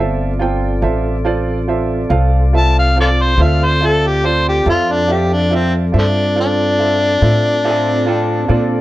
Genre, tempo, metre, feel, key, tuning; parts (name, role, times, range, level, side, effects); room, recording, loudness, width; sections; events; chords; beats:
blues; 47 BPM (dotted quarters); 12/8; straight; D minor; A4 = 440 Hz
warm upright piano; accompaniment; 0.0-8.8 s; F4 to G5; -21 LUFS; right 5 dB; plate reverb
mellow tonewheel organ; sustained chords; 0.0-8.8 s; C4 to D5; -22 LUFS; equal; slow rotary speaker
upright bass; bass; 0.0-8.8 s; G1 to Bb2; -16 LUFS; equal
overdriven harmonica; melody; 2.6-8.8 s; F3 to A5; -15 LUFS; left 1 dB; plate reverb
electric guitar through a small old amp; second line; 7.6-8.8 s; C4 to A4; -22 LUFS; equal; plate reverb, tape echo
moderate studio reverb, RT60 0.6 s; -12 LUFS; side -16 dB against mid
0.0-8.8 A section
0.0 Dm7
0.83 2.11 | 3.39 4.66 5.94 7.22 | 8.49